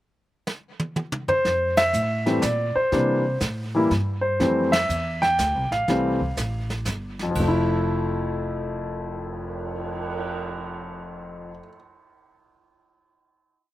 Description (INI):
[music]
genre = jazz piano trio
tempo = 122 BPM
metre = 3/4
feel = swing 67% on 8ths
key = F major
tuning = A4 = 440 Hz
[part]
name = jazz brush drum kit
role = drums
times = 0.5-10.2 s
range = brushed snare drum, crash cymbal, cymbal swell, hi-hat, kick drum, ride cymbal, snare drum, toms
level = -31 LUFS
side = right 2 dB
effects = none
[part]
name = warm concert grand piano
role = melody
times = 1.3-11.8 s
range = F2 to G5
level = -22 LUFS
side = equal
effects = none
[part]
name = upright bass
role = bass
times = 1.4-11.6 s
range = F1 to C3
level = -29 LUFS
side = equal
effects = none
[sound]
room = little or no reverb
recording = recorded outdoors, with no room sound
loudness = -22 LUFS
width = side -15 dB against mid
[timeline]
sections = 0.0-1.5 pickup bar; 1.5-7.4 A section; 7.4-10.3 final chord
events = drum fill 0.5-1.5; band accent 1.7, 4.6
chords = 0.0 N.C.; 1.5 Fmaj7; 2.9 C7; 4.4 Fmaj7